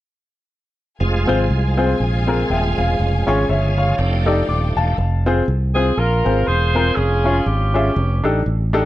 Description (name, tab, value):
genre	uptempo gospel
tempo	121 BPM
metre	4/4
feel	swing 56% on 8ths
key	unclear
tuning	A4 = 441 Hz
part	bright tonewheel organ	sustained chords	1.0-5.0 s	C3 to Ab4	-24 LUFS	right 2 dB	slow rotary speaker, chorus vibrato
part	warm studio string section	sustained chords	1.0-5.0 s	Ab4 to Ab5	-30 LUFS	left 2 dB	none
part	fingered electric bass	bass	1.0-8.9 s	Eb1 to C2	-18 LUFS	equal	none
part	clear concert grand piano	accompaniment	1.3-8.9 s	C4 to D6	-20 LUFS	left 2 dB	none
part	clear saxophone section	melody	5.8-8.4 s	Db4 to C5	-20 LUFS	right 1 dB	none
room	light reverb, small room ambience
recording	none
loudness	-15 LUFS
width	side -15 dB against mid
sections	1.0-5.0 A section; 5.0-8.9 B section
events	none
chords	1.0 Fm; 3.0 Db/F; 4.0 F13; 5.0 Fm; 7.0 Db/F; 8.0 F13